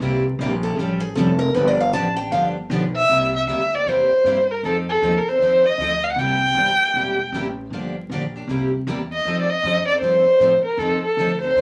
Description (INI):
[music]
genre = acoustic string swing (jazz manouche)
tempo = 156 BPM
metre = 4/4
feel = swing 63% on 8ths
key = C mixolydian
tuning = A4 = 440 Hz
[part]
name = picked steel-string acoustic guitar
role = accompaniment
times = 0.0-11.6 s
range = C3 to A4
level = -31 LUFS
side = equal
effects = none
[part]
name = picked steel-string acoustic guitar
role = accompaniment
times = 0.0-11.6 s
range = C3 to A4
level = -30 LUFS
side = equal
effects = none
[part]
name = upright bass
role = bass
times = 0.0-11.6 s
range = E1 to A2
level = -29 LUFS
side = equal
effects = none
[part]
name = picked steel-string acoustic guitar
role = second line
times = 0.6-2.5 s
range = G4 to A5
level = -24 LUFS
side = equal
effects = none
[part]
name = dark violin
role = melody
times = 3.0-11.6 s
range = A4 to G5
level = -19 LUFS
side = equal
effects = none
[sound]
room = wet studio reverb, RT60 0.5 s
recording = vinyl crackle, lossy compression artefacts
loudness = -20 LUFS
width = mono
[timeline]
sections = 0.0-3.1 A section; 3.1-11.6 B section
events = steel-string acoustic guitar solo 0.0-3.1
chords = 0.0 C7; 0.8 Aaug7; 1.6 G7; 3.1 C7; 4.6 F7; 6.2 C7; 7.7 Gm7; 8.5 C7; 9.3 F7